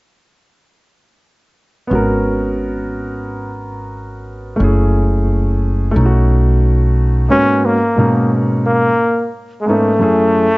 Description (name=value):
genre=hip hop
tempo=89 BPM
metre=4/4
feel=swing 63% on 16ths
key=G# minor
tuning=A4 = 442 Hz
part: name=dark baby grand piano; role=accompaniment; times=1.9-10.5 s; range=F#2 to A#4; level=-17 LUFS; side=equal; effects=plate reverb
part: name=upright bass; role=bass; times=1.9-7.3 s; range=F#1 to B1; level=-15 LUFS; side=equal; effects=none
part: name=clear trombone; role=melody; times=7.3-10.6 s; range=G#3 to C#4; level=-14 LUFS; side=equal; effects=plate reverb
room=moderate small room reverb, RT60 0.6 s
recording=worn, warbling old tape, cassette tape, warbly pitch drift, nothing above 7.8 kHz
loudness=-12 LUFS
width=side -23 dB against mid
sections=1.9-7.3 A section; 7.3-10.6 B section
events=none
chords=1.9 G#m11; 4.6 F#m9; 6.0 B7; 7.3 G#m11; 10.0 F#m9